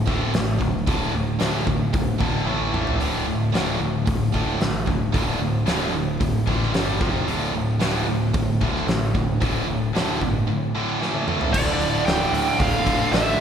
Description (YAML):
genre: heavy metal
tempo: 113 BPM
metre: 4/4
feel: straight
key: D minor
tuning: A4 = 441 Hz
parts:
  - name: high-gain distorted guitar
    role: riff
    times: 0.0-13.4 s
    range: D2 to A3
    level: -26 LUFS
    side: left 4 dB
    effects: distortion
  - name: tight distorted guitar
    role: riff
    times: 0.0-13.4 s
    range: D2 to A3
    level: -25 LUFS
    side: right 5 dB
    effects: distortion
  - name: growling picked electric bass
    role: bass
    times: 0.0-13.3 s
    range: D1 to D2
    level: -28 LUFS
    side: equal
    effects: overdrive
  - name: big rock drum kit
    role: drums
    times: 0.1-13.3 s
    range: crash cymbal, hi-hat, kick drum, snare drum, toms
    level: -25 LUFS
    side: equal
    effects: none
  - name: high-gain lead guitar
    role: melody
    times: 11.5-13.4 s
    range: D5 to G5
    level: -23 LUFS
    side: right 2 dB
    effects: distortion
  - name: pipe organ, sparkling flutes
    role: sustained chords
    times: 11.5-13.4 s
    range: none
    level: barely audible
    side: none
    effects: none
  - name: high-gain distorted guitar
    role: riff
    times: 11.5-13.4 s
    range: D2 to D3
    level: -29 LUFS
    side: equal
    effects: none
room: wet church reverb, RT60 2.9 s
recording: band playing live in one room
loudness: -20 LUFS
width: side -8 dB against mid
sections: 0.0-11.5 A section; 11.5-13.4 B section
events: drum fill 2.5-3.0, 11.0-11.5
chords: 0.0 D5; 2.5 A5; 3.0 D5; 6.7 G5; 7.0 F5; 7.3 D5; 11.0 A5; 11.5 Dm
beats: 0.34 | 0.88 1.41 1.94 2.47 | 3.01 3.54 4.07 4.61 | 5.14 5.67 6.20 6.74 | 7.27 7.80 8.34 8.87 | 9.40 9.93 10.47 11.00 | 11.53 12.06 12.60 13.13